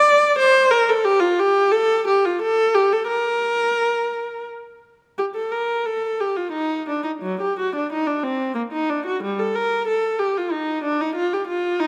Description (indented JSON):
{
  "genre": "classical, baroque-style suite movement for unaccompanied viola",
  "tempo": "83-94 BPM",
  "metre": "3/4",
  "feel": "rubato",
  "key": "Bb major, G minor from 5.2 s",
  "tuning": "A4 = 444 Hz",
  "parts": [
    { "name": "warm viola", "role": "solo", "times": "0.0-11.9 s", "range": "F#3 to D5", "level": "-20 LUFS", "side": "equal", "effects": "none" }
  ],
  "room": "moderate scoring stage reverb, RT60 2.0 s",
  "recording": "none",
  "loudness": "-21 LUFS",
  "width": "mono",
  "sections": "0.0-5.2 A section; 5.2-11.9 A section",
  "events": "none",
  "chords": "none",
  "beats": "0.39 | 1.04 1.71 2.39 | 3.10 3.80 4.49 | 5.18 5.86 6.53 | 7.22 7.90 8.56 | 9.21 9.86 10.51 | 11.17 11.81"
}